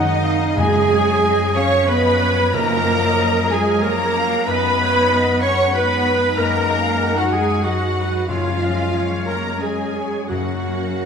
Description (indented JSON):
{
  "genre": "cinematic, emotional film score for orchestra",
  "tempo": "93 BPM",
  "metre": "3/4",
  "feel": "uneven beats, rubato",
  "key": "unclear",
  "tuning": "A4 = 440 Hz",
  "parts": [
    { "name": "rich symphonic violin section", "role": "melody", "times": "0.0-11.1 s", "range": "D#5 to C#6", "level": "-27 LUFS", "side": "left 3 dB", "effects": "none" },
    { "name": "clear symphonic violin section", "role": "second line", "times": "0.0-11.1 s", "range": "D#5 to C#6", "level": "-26 LUFS", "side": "left 3 dB", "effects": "none" },
    { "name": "flute section", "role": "second line", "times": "0.0-11.1 s", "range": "A#4 to F#5", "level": "-28 LUFS", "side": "left 2 dB", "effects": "none" },
    { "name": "mellow clarinet", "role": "second line", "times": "0.0-11.1 s", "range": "D#4 to C#5", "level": "-25 LUFS", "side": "equal", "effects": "none" },
    { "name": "rich symphonic viola section", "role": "accompaniment", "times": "0.0-11.1 s", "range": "D#4 to C#5", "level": "-21 LUFS", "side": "right 3 dB", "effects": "none" },
    { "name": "mellow French horn section", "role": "sustained chords", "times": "0.0-11.1 s", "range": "E#3 to D#4", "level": "-29 LUFS", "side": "left 2 dB", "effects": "none" },
    { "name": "concert harp", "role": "arpeggios", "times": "0.0-11.1 s", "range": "F#2 to G#4", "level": "-26 LUFS", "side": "left 6 dB", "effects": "none" },
    { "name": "rich symphonic cello section", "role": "bass", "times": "0.0-11.1 s", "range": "D#3 to C#4", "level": "-25 LUFS", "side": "right 3 dB", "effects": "none" },
    { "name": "rich symphonic double bass section", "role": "bass", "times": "0.0-11.1 s", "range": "F#2", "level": "-26 LUFS", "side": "right 1 dB", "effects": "none" },
    { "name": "timpani", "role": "percussion", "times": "0.6-3.5, 8.3-11.1 s", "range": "F#2", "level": "-29 LUFS", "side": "equal", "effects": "none" }
  ],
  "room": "wet concert hall reverb, RT60 2.4 s",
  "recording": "minimal, uncompressed stereo recording",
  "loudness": "-16 LUFS",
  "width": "side -6 dB against mid",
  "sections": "0.0-11.1 A section",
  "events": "none",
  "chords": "0.0 G#7/F#; 0.6 C#/F#; 2.5 A#m/F#; 4.5 B6/F#; 8.3 C#/F#; 10.3 F#",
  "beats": "| 0.57 1.23 1.88 | 2.53 3.18 3.83 | 4.47 5.10 5.74 | 6.37 7.01 7.64 | 8.28 8.93 9.60 | 10.29 11.01"
}